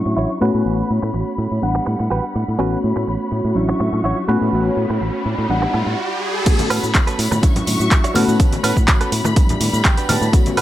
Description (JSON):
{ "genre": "filtered disco house", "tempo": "124 BPM", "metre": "4/4", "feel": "straight", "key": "A mixolydian", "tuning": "A4 = 440 Hz", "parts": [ { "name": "reed electric piano", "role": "accompaniment", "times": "0.0-10.6 s", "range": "F#3 to F#5", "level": "-22 LUFS", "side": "left 1 dB", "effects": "phaser, sidechain pumping, low-pass filter" }, { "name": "dark studio string section", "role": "sustained chords", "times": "0.0-10.6 s", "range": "G3 to C#6", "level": "-26 LUFS", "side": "left 1 dB", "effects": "sidechain pumping, low-pass filter" }, { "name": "direct-recorded clean electric guitar", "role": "riff", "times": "0.1-10.6 s", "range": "C#4 to A5", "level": "-24 LUFS", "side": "right 4 dB", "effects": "analog chorus, sidechain pumping, low-pass filter" }, { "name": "fingered electric bass", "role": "bass", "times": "0.1-10.6 s", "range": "A1 to A2", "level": "-21 LUFS", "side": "equal", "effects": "sidechain pumping, low-pass filter" }, { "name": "riser", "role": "sound effects", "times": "4.0-6.5 s", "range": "none", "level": "-26 LUFS", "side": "right 2 dB", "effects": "none" }, { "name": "electronic kick drum", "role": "drums", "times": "6.5-10.4 s", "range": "none", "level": "-15 LUFS", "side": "equal", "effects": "none" }, { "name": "punchy analog drum machine", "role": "drums", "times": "6.5-10.6 s", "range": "crash cymbal, handclaps, hi-hat, shaker, woodblock", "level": "-21 LUFS", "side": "right 1 dB", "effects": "sidechain pumping on hats, sidechain pumping on cymbals, sidechain pumping on perc" }, { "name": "tambourine and congas", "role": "percussion", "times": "6.5-10.6 s", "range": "none", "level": "-27 LUFS", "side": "left 3 dB", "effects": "sidechain pumping on perc, low-pass filter on perc" } ], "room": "light reverb", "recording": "none", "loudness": "-15 LUFS", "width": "side -13 dB against mid", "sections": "0.0-6.5 A section; 6.5-10.6 B section", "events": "filter sweep 0.0-6.5; riser 4.0-6.5; break 6.0-6.5; drop 6.5-10.6; clean electric guitar fill 9.6-10.3", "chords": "0.4 A69; 1.6 Gmaj7/A; 2.6 A69; 3.6 Dmaj9/A; 4.3 A69; 5.5 Gmaj7/A; 6.5 A69; 7.4 Dmaj9/A; 8.2 A69; 9.4 Gmaj7/A" }